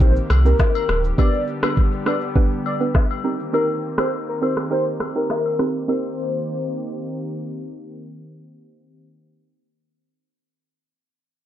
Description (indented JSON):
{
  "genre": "afrobeats",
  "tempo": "102 BPM",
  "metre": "4/4",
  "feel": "straight",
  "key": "C minor",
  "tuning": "A4 = 440 Hz",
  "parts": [
    { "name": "warm velvety synth lead", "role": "melody", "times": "0.0-7.6 s", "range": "Bb4 to D5", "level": "-25 LUFS", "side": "left 2 dB", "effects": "chorus" },
    { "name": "soft round pluck", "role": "accompaniment", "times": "0.0-9.7 s", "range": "B3 to B4", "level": "-24 LUFS", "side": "right 4 dB", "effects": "chorus" },
    { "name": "warm analog pad", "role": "sustained chords", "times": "0.0-9.0 s", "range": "D3 to G4", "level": "-30 LUFS", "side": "left 1 dB", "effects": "lush chorus" },
    { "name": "warm sub bass", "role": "bass", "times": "0.0-1.1 s", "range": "D1 to C2", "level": "-17 LUFS", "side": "equal", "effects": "none" },
    { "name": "afro-pop drum kit", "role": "drums", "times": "0.0-5.9 s", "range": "kick drum, rim click, shaker", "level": "-20 LUFS", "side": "equal", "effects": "none" },
    { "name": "agogo bells and woodblock", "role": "percussion", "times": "0.3-6.2 s", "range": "none", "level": "-31 LUFS", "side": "left 12 dB", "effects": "none" }
  ],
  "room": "light reverb",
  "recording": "dark, warm production, low-pass filter",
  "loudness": "-18 LUFS",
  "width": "side -11 dB against mid",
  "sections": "0.0-5.9 A section; 5.9-8.2 B section",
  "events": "filter sweep 0.0-5.9",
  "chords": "0.0 Cm7; 1.2 G; 3.2 Cm7",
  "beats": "0.00 0.59 | 1.18 1.77 2.36 2.94 | 3.53 4.12 4.71 5.30 | 5.89 6.47 7.06 7.65"
}